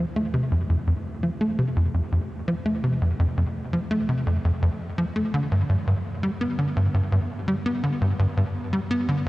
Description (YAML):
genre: ambient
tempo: 84 BPM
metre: 4/4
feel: straight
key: F lydian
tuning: A4 = 438 Hz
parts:
  - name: tight sequencer bass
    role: solo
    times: 0.0-9.3 s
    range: F2 to B3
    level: -22 LUFS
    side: equal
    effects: wide subtle chorus, tape echo
room: wet huge ambient reverb, RT60 8.6 s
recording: worn, warbling old tape, cassette tape, warbly pitch drift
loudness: -22 LUFS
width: side -18 dB against mid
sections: 0.0-9.3 A section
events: none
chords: none